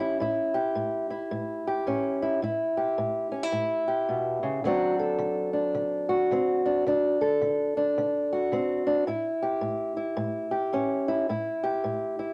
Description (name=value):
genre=blues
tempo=108 BPM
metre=4/4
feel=swing 62% on 8ths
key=unclear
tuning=A4 = 438 Hz
part: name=fingerpicked old ladder-braced acoustic guitar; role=solo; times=0.0-12.3 s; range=A2 to A4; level=-27 LUFS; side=equal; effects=none
room=moderate studio reverb, RT60 0.8 s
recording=none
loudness=-27 LUFS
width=mono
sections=0.0-12.3 A section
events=none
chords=0.0 A7; 4.6 D7; 9.1 A7